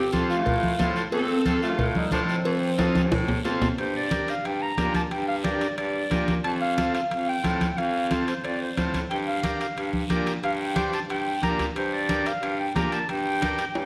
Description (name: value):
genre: latin, cumbia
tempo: 181 BPM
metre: 4/4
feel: straight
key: G minor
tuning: A4 = 440 Hz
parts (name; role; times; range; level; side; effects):
- mellow saxophone section; melody; 0.0-3.4 s; C4 to A4; -31 LUFS; equal; none
- warm clarinet; second line; 0.0-13.9 s; F3 to Bb5; -31 LUFS; equal; none
- breathy baritone saxophone; bass; 0.0-13.9 s; F2 to Bb2; -32 LUFS; equal; none
- combo organ; accompaniment; 0.1-13.7 s; C4 to Eb5; -34 LUFS; equal; none
- congas; percussion; 0.1-13.9 s; none; -31 LUFS; equal; none
- cowbell and timbales; percussion; 0.1-13.8 s; none; -36 LUFS; equal; none
- guiro; percussion; 0.1-13.9 s; none; -42 LUFS; equal; none
room: wet recital hall reverb, RT60 1.7 s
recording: vinyl crackle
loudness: -25 LUFS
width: mono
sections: 0.0-3.8 A section; 3.8-13.9 B section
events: drum fill 2.8-3.8; clarinet solo 3.8-13.9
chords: 0.0 F; 3.8 Gm; 6.4 F; 9.1 Gm